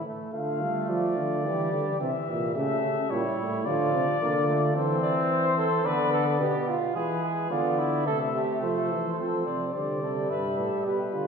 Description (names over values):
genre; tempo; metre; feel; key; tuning
classical, imitative canzona for brass ensemble; 108 BPM; 4/4; straight; D minor; A4 = 440 Hz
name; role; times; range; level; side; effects
mellow trumpet; melody; 0.0-11.3 s; B4 to F5; -30 LUFS; left 7 dB; none
mellow flugelhorn; second line; 0.0-11.3 s; E4 to D5; -30 LUFS; right 5 dB; none
clear trombone; accompaniment; 0.0-11.3 s; E3 to C4; -32 LUFS; right 2 dB; none
mellow euphonium; bass; 0.0-11.3 s; G2 to G3; -30 LUFS; right 1 dB; none
room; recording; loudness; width
wet recital hall reverb, RT60 1.6 s; recorded in a church or concert hall, nothing above 7.4 kHz; -24 LUFS; side -6 dB against mid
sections
0.3-9.2 A section; 9.2-11.3 B section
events
none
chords
0.3 Dm; 1.4 Edim; 2.6 A/C#; 3.7 Dm; 4.8 Am/E; 5.9 Bdim/D; 7.0 E; 8.1 Am/C; 9.2 F; 10.3 Em/G